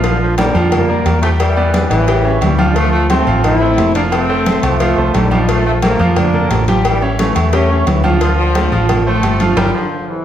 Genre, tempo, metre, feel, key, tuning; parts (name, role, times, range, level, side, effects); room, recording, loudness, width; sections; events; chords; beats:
latin, salsa; 176 BPM; 4/4; straight; A4 = 440 Hz
brilliant trombone section; melody; 0.0-10.2 s; C3 to E4; -17 LUFS; left 1 dB
bright grand piano; accompaniment; 0.0-9.7 s; F3 to G5; -18 LUFS; right 2 dB
hollow-body short-scale fingered electric bass; bass; 0.0-9.7 s; F1 to F2; -16 LUFS; equal
congas; percussion; 0.0-9.7 s; -20 LUFS; right 1 dB
cowbell; percussion; 0.0-9.7 s; -24 LUFS; left 5 dB
timbales and agogo bells; percussion; 0.4-9.6 s; -23 LUFS; equal
wet large studio reverb, RT60 1.2 s; heard from further back in the room; -11 LUFS; side -10 dB against mid
0.0-10.2 A section
drum fill 9.6-10.2; band accent 9.6-10.2
0.0 Bb6; 1.4 Em7; 2.1 A7; 2.8 Dm9; 4.1 F7; 5.5 Bbmaj7; 6.8 A7; 8.2 Dm7; 9.6 Gm7
| 0.04 0.38 0.72 1.06 | 1.40 1.74 2.08 2.42 | 2.76 3.10 3.44 3.78 | 4.12 4.46 4.80 5.14 | 5.48 5.83 6.17 6.51 | 6.85 7.19 7.53 7.87 | 8.21 8.55 8.89 9.23 | 9.57 9.91